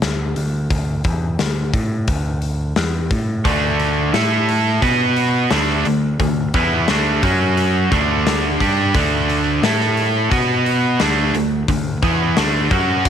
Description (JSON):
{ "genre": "classic rock", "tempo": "88 BPM", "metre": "4/4", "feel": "straight", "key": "D major", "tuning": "A4 = 440 Hz", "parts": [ { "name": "growling picked electric bass", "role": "bass", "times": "0.0-13.0 s", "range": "D2 to B2", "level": "-20 LUFS", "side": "equal", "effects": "overdrive" }, { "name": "big rock drum kit", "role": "drums", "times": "0.0-13.1 s", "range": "crash cymbal, hi-hat, kick drum, snare drum", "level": "-22 LUFS", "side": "left 2 dB", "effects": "none" }, { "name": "cranked stack guitar", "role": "riff", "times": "3.4-13.0 s", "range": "D3 to B4", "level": "-17 LUFS", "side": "right 2 dB", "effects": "overdrive" } ], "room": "little or no reverb", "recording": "1960s-style stereo", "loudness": "-15 LUFS", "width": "side -8 dB against mid", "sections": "0.0-13.1 A section", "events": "none", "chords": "0.0 D5; 4.1 A5; 4.8 B5; 5.5 D5; 7.2 F#5; 7.9 D5; 9.6 A5; 10.3 B5; 11.0 D5" }